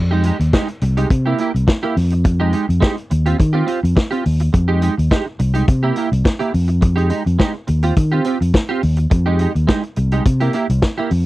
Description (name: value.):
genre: disco.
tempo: 105 BPM.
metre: 4/4.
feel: straight.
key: F minor.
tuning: A4 = 440 Hz.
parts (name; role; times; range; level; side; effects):
fingered electric bass; bass; 0.0-11.3 s; C2 to Eb3; -15 LUFS; equal; none.
clean electric guitar; accompaniment; 0.1-11.2 s; Ab3 to G4; -20 LUFS; right 4 dB; analog chorus.
vintage drum kit; drums; 0.2-11.3 s; hi-hat, kick drum, snare drum; -16 LUFS; equal; none.
room: little or no reverb.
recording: dry, close 1970s-style studio recording.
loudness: -14 LUFS.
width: side -18 dB against mid.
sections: 0.0-11.3 A section.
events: none.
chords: 0.0 Fm9; 1.1 C7; 2.0 Fm9; 3.1 Eb69; 4.5 Fm9; 5.7 C7; 6.5 Fm9; 7.7 Eb69; 9.1 Fm9; 10.3 C7.